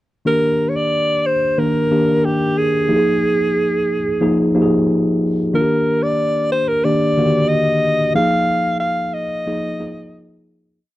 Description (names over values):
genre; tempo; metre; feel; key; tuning
soul; 91 BPM; 4/4; straight; Eb major; A4 = 441 Hz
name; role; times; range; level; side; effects
mellow alto saxophone; melody; 0.3-10.5 s; G4 to F5; -18 LUFS; right 1 dB; none
mellow tine electric piano; accompaniment; 0.3-10.8 s; D3 to Bb4; -18 LUFS; left 1 dB; none
room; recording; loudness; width
small room ambience; dry, close 1970s-style studio recording; -15 LUFS; side -16 dB against mid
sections
0.3-10.8 verse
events
fade-out 8.2-10.8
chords
0.3 Ebmaj7; 2.9 Bb7sus4/F; 5.5 Ebmaj7; 8.2 Bb7sus4/F